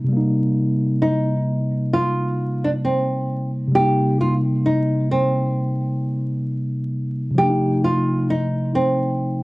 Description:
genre	hip hop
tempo	66 BPM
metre	4/4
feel	swing 56% on 16ths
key	C minor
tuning	A4 = 443 Hz
part	mellow tine electric piano	accompaniment	0.0-9.4 s	C3 to Eb4	-20 LUFS	equal	medium stereo tremolo, cassette tape
part	nylon-string guitar	melody	1.0-9.4 s	C4 to G4	-21 LUFS	equal	none
room	wet studio reverb, RT60 0.6 s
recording	worn, warbling old tape, cassette tape, vinyl crackle, warbly pitch drift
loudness	-18 LUFS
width	side -22 dB against mid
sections	0.0-3.7 A section; 3.7-9.4 B section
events	none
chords	0.0 Cm7; 7.4 F7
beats	| 0.10 1.01 1.92 2.83 | 3.74 4.65 5.56 6.46 | 7.37 8.28 9.19

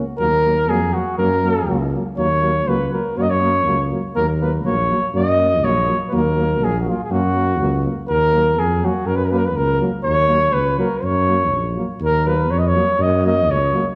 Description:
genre	balkan folk, Balkan brass band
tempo	122 BPM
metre	2/4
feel	swing 54% on 16ths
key	F# major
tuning	A4 = 441 Hz
part	dark trombone	accompaniment	0.0-13.8 s	F#3	-29 LUFS	equal	none
part	warm French horn	accompaniment	0.0-13.8 s	A#3	-29 LUFS	equal	none
part	mellow flugelhorn	melody	0.2-13.9 s	E#4 to D#5	-21 LUFS	equal	none
part	mellow tuba	bass	0.2-13.8 s	A#1 to F#2	-23 LUFS	equal	none
room	moderate scoring stage reverb, RT60 1.6 s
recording	recorded in a church or concert hall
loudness	-18 LUFS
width	mono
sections	0.2-8.1 A section; 8.1-14.0 A section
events	none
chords	0.2 D#m; 1.2 F#; 2.2 D#m; 3.2 F#; 4.1 D#m; 5.1 F#; 6.1 D#m; 7.1 F#; 8.1 D#m; 9.1 F#; 10.0 D#m; 11.0 F#; 12.0 D#m; 13.0 F#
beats	| 0.19 0.68 | 1.18 1.67 | 2.17 2.66 | 3.16 3.65 | 4.15 4.64 | 5.13 5.63 | 6.12 6.61 | 7.10 7.59 | 8.09 8.57 | 9.06 9.55 | 10.04 10.53 | 11.02 11.51 | 12.00 12.49 | 12.98 13.48

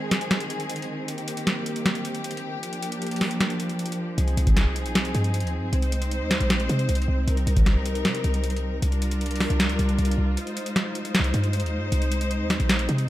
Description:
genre	hip hop, trap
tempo	155 BPM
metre	4/4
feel	half-time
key	C minor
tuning	A4 = 440 Hz
part	warm studio string section	sustained chords	0.0-13.1 s	Eb3 to C5	-28 LUFS	equal	none
part	booming analog drum machine	drums	0.1-13.1 s	hi-hat, kick drum, snare drum	-25 LUFS	equal	none
part	short 808-style bass	bass	4.2-13.1 s	Bb1 to C3	-24 LUFS	equal	none
room	light reverb, digital ambience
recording	none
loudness	-22 LUFS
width	side -15 dB against mid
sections	0.0-13.1 A section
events	break 0.0-4.2, 10.4-11.1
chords	0.0 Ab; 1.1 Cm7; 2.6 Gm7; 4.2 Fm7; 5.7 Ab; 7.3 Cm7; 8.8 Gm7/C; 10.4 Fm7; 11.9 Ab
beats	0.31 0.69 | 1.08 1.47 1.86 2.24 | 2.63 3.02 3.40 3.79 | 4.18 4.57 4.95 5.34 | 5.73 6.11 6.50 6.89 | 7.28 7.66 8.05 8.44 | 8.82 9.21 9.60 9.98 | 10.37 10.76 11.15 11.53 | 11.92 12.31 12.70 13.08

